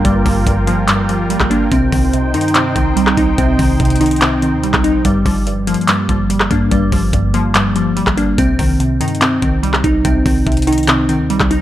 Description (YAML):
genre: hip hop, trap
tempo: 144 BPM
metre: 4/4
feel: half-time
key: G minor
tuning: A4 = 438 Hz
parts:
  - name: glassy wavetable pluck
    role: accompaniment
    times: 0.0-11.6 s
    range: G2 to Eb4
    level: -18 LUFS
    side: equal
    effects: chorus
  - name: sweeping resonant pad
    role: sustained chords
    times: 0.0-5.0 s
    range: Eb4 to G5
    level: -23 LUFS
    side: equal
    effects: chorus
  - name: glassy digital keys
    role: arpeggios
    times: 0.0-11.6 s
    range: G3 to Eb4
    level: -17 LUFS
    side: equal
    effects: chorus, tape echo
  - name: warm 808-style bass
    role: bass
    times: 0.0-11.6 s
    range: G1 to G2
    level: -20 LUFS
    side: equal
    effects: transformer saturation
  - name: trap drum kit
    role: drums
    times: 0.0-11.6 s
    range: handclaps, hi-hat, kick drum, rim click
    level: -17 LUFS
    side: equal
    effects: none
room: digital ambience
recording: dry, gritty hardware recording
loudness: -12 LUFS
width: side -13 dB against mid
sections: 0.0-5.0 A section; 5.0-11.6 A section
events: none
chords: 0.0 Gm7; 1.7 Cm; 5.0 Gm7; 8.4 Cm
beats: | 0.05 0.47 0.88 1.30 | 1.72 2.13 2.55 2.97 | 3.38 3.80 4.22 4.63 | 5.05 5.47 5.88 6.30 | 6.72 7.13 7.55 7.97 | 8.38 8.80 9.22 9.63 | 10.05 10.47 10.88 11.30